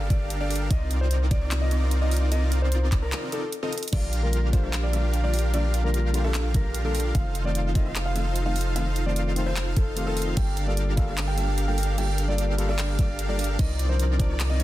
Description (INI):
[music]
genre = future bass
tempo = 149 BPM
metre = 4/4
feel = half-time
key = Bb major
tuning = A4 = 440 Hz
[part]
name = airy dreamy lead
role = arpeggios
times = 0.0-14.6 s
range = D5 to F5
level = -39 LUFS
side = right 1 dB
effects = chorus, sidechain pumping
[part]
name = dense compressed supersaw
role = riff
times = 0.0-14.6 s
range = C4 to F5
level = -32 LUFS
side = right 1 dB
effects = sidechain pumping
[part]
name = long sustained 808-style bass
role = bass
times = 0.0-14.6 s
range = F1 to C2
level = -25 LUFS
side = equal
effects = sidechain pumping
[part]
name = warm concert grand piano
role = melody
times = 0.1-14.6 s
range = A4 to G5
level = -34 LUFS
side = left 1 dB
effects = sidechain pumping, digital delay
[part]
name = electronic kick drum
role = drums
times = 0.1-14.3 s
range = none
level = -24 LUFS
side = equal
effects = studio reverb
[part]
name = trap drum kit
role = drums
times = 0.1-14.6 s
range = crash cymbal, handclaps, hi-hat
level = -33 LUFS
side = right 1 dB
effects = studio reverb
[part]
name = bright tine electric piano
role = accompaniment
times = 3.9-14.6 s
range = D3 to Bb4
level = -34 LUFS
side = left 3 dB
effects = vintage 12-bit sampler grit, sidechain pumping, digital delay
[sound]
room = little or no reverb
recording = dense, heavily limited modern master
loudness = -22 LUFS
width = side -15 dB against mid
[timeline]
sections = 0.0-14.6 A section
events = break 3.1-3.9; drum fill 3.7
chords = 0.0 Gm9; 0.7 Cm11; 3.9 Bb6; 7.1 F7; 10.4 Gm9; 13.6 Cm11